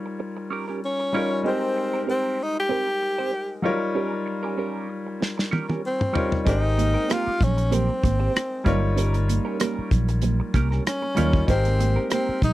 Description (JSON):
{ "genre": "lush 1970s-style soul", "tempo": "96 BPM", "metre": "4/4", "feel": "swing 54% on 16ths", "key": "Ab major", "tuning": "A4 = 440 Hz", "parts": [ { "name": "clear concert grand piano", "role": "accompaniment", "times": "0.0-12.5 s", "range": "Gb3 to Db5", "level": "-28 LUFS", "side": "left 2 dB", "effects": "none" }, { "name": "clean electric guitar", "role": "riff", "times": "0.1-12.5 s", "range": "C4 to C5", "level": "-30 LUFS", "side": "right 6 dB", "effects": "wah" }, { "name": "clear tenor saxophone", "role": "melody", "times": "0.9-12.5 s", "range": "C4 to G4", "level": "-25 LUFS", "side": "equal", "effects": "none" }, { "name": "warm soul drum kit", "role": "drums", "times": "5.2-12.5 s", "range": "hi-hat, kick drum, rim click, snare drum, toms", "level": "-24 LUFS", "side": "equal", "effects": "none" }, { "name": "fingered electric bass", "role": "bass", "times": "6.5-12.5 s", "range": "G1 to Eb2", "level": "-22 LUFS", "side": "equal", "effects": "none" }, { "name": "congas", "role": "percussion", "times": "6.5-12.5 s", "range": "none", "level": "-30 LUFS", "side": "right 8 dB", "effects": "none" } ], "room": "little or no reverb", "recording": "dry, close 1970s-style studio recording", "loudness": "-21 LUFS", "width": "side -16 dB against mid", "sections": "0.0-12.5 A section", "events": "drum fill 5.2-6.5", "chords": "0.0 Eb7/G; 1.5 Abmaj9; 3.6 Eb7/G; 6.5 Abmaj9; 8.7 Eb7/G; 11.5 Abmaj9", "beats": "0.20 0.83 | 1.45 2.08 2.71 3.33 | 3.96 4.58 5.21 5.84 | 6.46 7.09 7.72 8.35 | 8.97 9.60 10.23 10.86 | 11.48 12.11" }